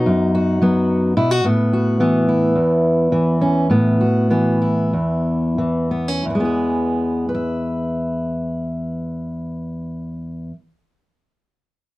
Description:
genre	folk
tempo	87-109 BPM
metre	4/4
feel	straight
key	E major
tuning	A4 = 440 Hz
part	fingerpicked steel-string acoustic guitar	solo	0.0-10.6 s	E2 to E5	-17 LUFS	equal	none
room	moderate small room reverb, RT60 0.5 s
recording	dry, close 1970s-style studio recording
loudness	-16 LUFS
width	side -19 dB against mid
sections	0.0-1.4 A section; 1.4-6.2 B section; 6.2-9.0 C section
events	slowing down 1.4-6.2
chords	0.0 B; 1.4 Asus2; 6.2 E

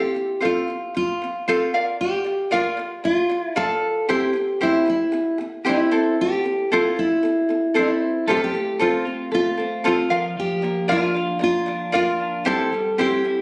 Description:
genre	acoustic pop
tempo	115 BPM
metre	4/4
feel	straight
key	F major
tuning	A4 = 440 Hz
part	nylon-string guitar	melody	0.0-13.4 s	E4 to A4	-24 LUFS	equal	none
part	ukulele	accompaniment	0.0-13.4 s	C4 to F5	-25 LUFS	equal	none
part	twelve-string electric guitar	arpeggios	8.3-13.4 s	F3 to F4	-31 LUFS	equal	none
room	little or no reverb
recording	recorded on a phone in the room, studio reverb, compression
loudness	-21 LUFS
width	mono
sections	0.0-13.4 A section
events	none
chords	0.0 F; 1.7 Bb; 4.1 C; 5.9 Am/C; 8.3 F; 10.1 Bb; 12.5 C

